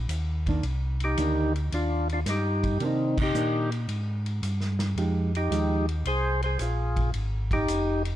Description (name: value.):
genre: soul jazz organ trio.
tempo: 111 BPM.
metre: 4/4.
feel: swing 69% on 8ths.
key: C minor.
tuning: A4 = 440 Hz.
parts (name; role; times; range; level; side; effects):
mellow tonewheel organ; bass; 0.0-8.2 s; F1 to C3; -27 LUFS; equal; chorus vibrato, slow rotary speaker.
warm soul drum kit; drums; 0.1-8.1 s; crash cymbal, hi-hat, kick drum, ride cymbal, snare drum; -34 LUFS; equal; none.
hollow-body jazz guitar; accompaniment; 0.5-5.9 s; Eb3 to G4; -31 LUFS; right 3 dB; none.
percussive tonewheel organ; melody; 1.0-8.0 s; C4 to C5; -28 LUFS; left 1 dB; slow rotary speaker, overdrive.
room: light reverb.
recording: dark, warm production.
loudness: -24 LUFS.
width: side -12 dB against mid.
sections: 0.0-8.2 A section.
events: band accent 3.1.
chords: 0.0 Cm9; 5.0 Fm9.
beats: 0.09 | 0.64 1.18 1.72 2.26 | 2.80 3.35 3.89 4.43 | 4.97 5.51 6.06 6.60 | 7.14 7.68.